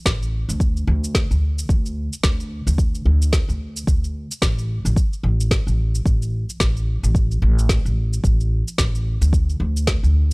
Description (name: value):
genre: organic downtempo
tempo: 110 BPM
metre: 4/4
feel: swing 58% on 16ths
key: unclear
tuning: A4 = 441 Hz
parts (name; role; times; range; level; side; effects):
- upright bass; bass; 0.1-10.3 s; A1 to D2; -19 LUFS; equal; sidechain pumping
- electronic kick drum; drums; 0.1-10.0 s; none; -20 LUFS; equal; none
- electronic snare drum and cabasa; drums; 0.1-10.1 s; none; -24 LUFS; equal; none
room: little or no reverb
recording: dry, gritty hardware recording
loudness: -18 LUFS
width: side -29 dB against mid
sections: 0.0-10.3 A section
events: none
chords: none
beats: 0.06 | 0.60 1.15 1.69 2.24 | 2.78 3.33 3.87 4.42 | 4.96 5.51 6.05 6.60 | 7.15 7.69 8.24 8.78 | 9.33 9.87